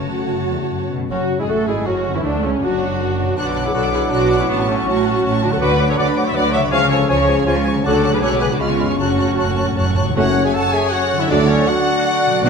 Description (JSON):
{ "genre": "classical, dramatic, fast romantic movement for symphony orchestra", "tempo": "143-164 BPM", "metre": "3/4", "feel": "rubato", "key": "F# minor", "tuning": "A4 = 439 Hz", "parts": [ { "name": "warm symphonic violin section", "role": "melody", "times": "0.0-12.5 s", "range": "C#4 to F#6", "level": "-26 LUFS", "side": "left 3 dB", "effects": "none" }, { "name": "warm symphonic violin section", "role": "second line", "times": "0.0-12.5 s", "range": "C#4 to D6", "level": "-28 LUFS", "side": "left 2 dB", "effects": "none" }, { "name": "rich symphonic viola section", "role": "accompaniment", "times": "0.0-12.5 s", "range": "F#3 to E#5", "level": "-21 LUFS", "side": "right 1 dB", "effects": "none" }, { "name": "dark French horn section", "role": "sustained chords", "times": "0.0-12.5 s", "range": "C#3 to F#4", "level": "-26 LUFS", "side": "left 3 dB", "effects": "none" }, { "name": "concert harp", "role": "arpeggios", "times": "0.0-12.5 s", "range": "F#2 to C#5", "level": "-25 LUFS", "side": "left 9 dB", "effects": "none" }, { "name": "rich symphonic cello section", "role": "bass", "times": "0.0-12.5 s", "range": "C#2 to D3", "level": "-25 LUFS", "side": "right 2 dB", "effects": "none" }, { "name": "rich symphonic double bass section", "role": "bass", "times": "0.0-12.5 s", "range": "F#1 to D2", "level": "-24 LUFS", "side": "right 4 dB", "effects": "none" }, { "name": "concert flute", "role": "second line", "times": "1.1-12.5 s", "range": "C#4 to D6", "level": "-27 LUFS", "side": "left 2 dB", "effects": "none" }, { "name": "warm clarinet", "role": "second line", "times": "1.1-12.5 s", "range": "C#4 to B5", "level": "-30 LUFS", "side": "left 1 dB", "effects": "none" }, { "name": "warm cor anglais", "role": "second line", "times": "1.1-12.5 s", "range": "A3 to C#5", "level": "-26 LUFS", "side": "right 3 dB", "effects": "none" }, { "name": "mellow bassoon", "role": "accompaniment", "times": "1.1-12.5 s", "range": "C#3 to D4", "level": "-25 LUFS", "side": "right 2 dB", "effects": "none" }, { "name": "timpani", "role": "percussion", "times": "9.0-10.2 s", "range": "F#2", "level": "-26 LUFS", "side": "equal", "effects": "none" }, { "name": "warm trombone section", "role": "sustained chords", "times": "10.2-12.5 s", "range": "F#3 to B3", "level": "-28 LUFS", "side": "right 4 dB", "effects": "none" }, { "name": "clear trumpet section", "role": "stabs", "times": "10.2-12.5 s", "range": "C#4 to A4", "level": "-22 LUFS", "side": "equal", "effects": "none" }, { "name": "dark tuba", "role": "bass", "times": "10.2-12.5 s", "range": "F#1 to D2", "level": "-24 LUFS", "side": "right 4 dB", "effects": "none" } ], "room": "wet scoring stage reverb, RT60 1.7 s", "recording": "none", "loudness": "-15 LUFS", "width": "side -5 dB against mid", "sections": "0.0-1.1 A section; 1.1-10.2 B section; 10.2-12.5 B section", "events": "timpani fill 9.0-10.2", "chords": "0.0 F#m; 2.2 D; 3.4 Bm; 4.5 F#m/A; 5.6 Bm/D; 6.7 C#; 7.8 D; 8.2 G#m7b5/B; 8.6 C#7; 9.0 F#m; 11.3 D" }